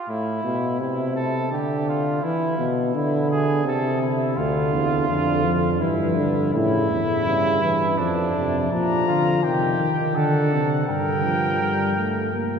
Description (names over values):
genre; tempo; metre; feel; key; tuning
classical, imitative canzona for brass ensemble; 83 BPM; 3/4; straight; D minor, G minor from 8.7 s; A4 = 440 Hz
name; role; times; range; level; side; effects
mellow trumpet; second line; 0.0-12.6 s; D4 to Bb4; -25 LUFS; right 2 dB; none
mellow euphonium; accompaniment; 0.1-12.6 s; A2 to Bb3; -23 LUFS; equal; none
mellow bass trombone; bass; 4.4-12.6 s; D2 to Eb3; -24 LUFS; equal; none
mellow trumpet; melody; 8.7-12.6 s; F#5 to Bb5; -26 LUFS; left 1 dB; none
room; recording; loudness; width
wet cathedral reverb, RT60 4.9 s; heard from further back in the room; -19 LUFS; side -6 dB against mid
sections
0.0-8.7 A section; 8.7-12.6 B section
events
none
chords
0.1 Am; 1.5 Dmadd11; 2.2 E; 3.7 Am/C; 4.4 Dm; 5.8 Em7/G; 6.5 A; 8.0 Dm/F; 8.7 Bb; 9.4 Cm; 10.2 D; 10.9 Gm